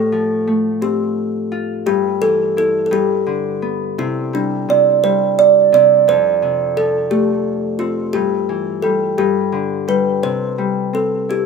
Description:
children's music, lullaby; 58 BPM (dotted quarters); 6/8; straight; C major; A4 = 440 Hz
kalimba; melody; 0.0-11.5 s; D4 to D5; -15 LUFS; right 3 dB; slapback echo
Celtic harp; accompaniment; 0.0-11.5 s; F2 to G4; -20 LUFS; left 4 dB; slapback echo
light reverb; recorded outdoors, with no room sound; -14 LUFS; side -5 dB against mid
0.0-11.5 A section
0.0 Fadd9/A; 1.9 Emadd11/G; 2.9 G; 4.0 C5; 6.1 F; 8.1 Emadd11/G; 9.2 G5; 10.2 C
0.82 | 1.86 2.92 | 3.98 5.03 | 6.08 7.11 | 8.14 9.18 | 10.23 11.29

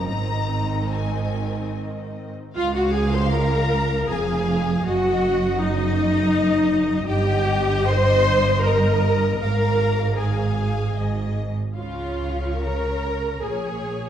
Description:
classical, slow romantic movement for string orchestra; 66-83 BPM; 3/4; rubato; Db major; A4 = 440 Hz
clear studio violin section; melody; 0.0-14.1 s; Db5 to Bb5; -32 LUFS; left 8 dB
rich symphonic violin section; second line; 0.0-14.1 s; Eb4 to C6; -31 LUFS; left 3 dB
rich symphonic viola section; accompaniment; 0.0-14.1 s; Eb3 to C5; -23 LUFS; equal
rich symphonic cello section; bass; 0.0-14.1 s; Db2 to Db3; -25 LUFS; right 2 dB
rich symphonic double bass section; bass; 0.0-14.1 s; F1 to Db2; -26 LUFS; right 2 dB
wet concert hall reverb, RT60 2.1 s; dark, warm production; -19 LUFS; side -10 dB against mid
0.0-2.6 A section; 2.6-14.1 B section
0.1 Ab; 2.6 Db; 4.9 Ebm/Gb; 7.1 Eb/G; 9.4 Fmadd11/Ab; 11.0 Ab5; 11.8 Db
| 0.08 0.94 1.76 | 2.57 3.34 4.10 | 4.86 5.61 6.34 | 7.08 7.88 8.64 | 9.42 10.18 10.96 | 11.76 12.63 13.43

